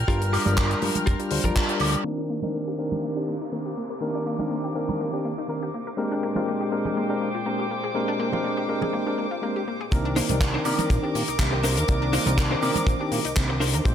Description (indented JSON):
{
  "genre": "nu-disco, nu disco",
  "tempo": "122 BPM",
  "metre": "4/4",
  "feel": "swing 53% on 16ths",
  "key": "C minor",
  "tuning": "A4 = 441 Hz",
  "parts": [
    { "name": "rich chamber string section", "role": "sustained chords", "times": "0.0-13.9 s", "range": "Bb2 to F6", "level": "-32 LUFS", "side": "equal", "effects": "sidechain pumping" },
    { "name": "fat analog bass", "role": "bass", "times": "0.0-2.0, 9.9-13.9 s", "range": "F1 to C3", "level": "-26 LUFS", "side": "equal", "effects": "sidechain pumping" },
    { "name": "bright tine electric piano", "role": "accompaniment", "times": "0.1-13.9 s", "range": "Eb3 to D5", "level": "-27 LUFS", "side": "equal", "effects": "auto-pan, low-pass filter, ping-pong delay" },
    { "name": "direct-recorded clean electric guitar", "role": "riff", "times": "0.1-1.8, 10.2-13.9 s", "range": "D4 to C5", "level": "-31 LUFS", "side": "left 1 dB", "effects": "analog chorus, ping-pong delay" },
    { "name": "damped 70s drum kit", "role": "drums", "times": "0.1-2.0, 9.9-13.9 s", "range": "handclaps, hi-hat, shaker, woodblock", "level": "-28 LUFS", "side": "left 1 dB", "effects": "low-pass filter on hats, studio reverb, low-pass filter on snare, low-pass filter on perc, low-pass filter on room" },
    { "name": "kick drum", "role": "drums", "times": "0.1-1.7, 9.9-13.9 s", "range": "none", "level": "-23 LUFS", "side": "equal", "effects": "studio reverb" },
    { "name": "congas", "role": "percussion", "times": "0.5-12.8 s", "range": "none", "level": "-32 LUFS", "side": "right 3 dB", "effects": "none" },
    { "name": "downlifter", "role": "sound effects", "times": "2.3-6.0 s", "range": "none", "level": "-45 LUFS", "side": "equal", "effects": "none" },
    { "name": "analog pluck", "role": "arpeggios", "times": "2.1-13.9 s", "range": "Bb3 to Bb4", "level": "-33 LUFS", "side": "left 3 dB", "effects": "chorus, sidechain pumping, digital delay" }
  ],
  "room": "moderate lush hall reverb, RT60 1.9 s, studio ambience",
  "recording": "low-pass filter",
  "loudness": "-22 LUFS",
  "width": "side -9 dB against mid",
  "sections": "0.0-2.0 A section; 2.0-9.9 B section; 9.9-13.9 C section",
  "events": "filter sweep on clean electric guitar 0.0-2.0; band accent 1.6; filter sweep on tine electric piano 2.0-9.9; filter sweep on synth arpeggio sound 2.0-9.9; filter sweep 2.0-9.9; drop 9.9-13.9",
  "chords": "0.0 Gm7; 2.0 Cm9; 6.0 Bb13; 9.9 Cm9",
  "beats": "| 0.08 0.57 1.07 1.56 | 2.05 2.54 3.03 3.52 | 4.02 4.51 5.00 5.49 | 5.98 6.48 6.97 7.46 | 7.95 8.44 8.94 9.43 | 9.92 10.41 10.90 11.39 | 11.89 12.38 12.87 13.36 | 13.85"
}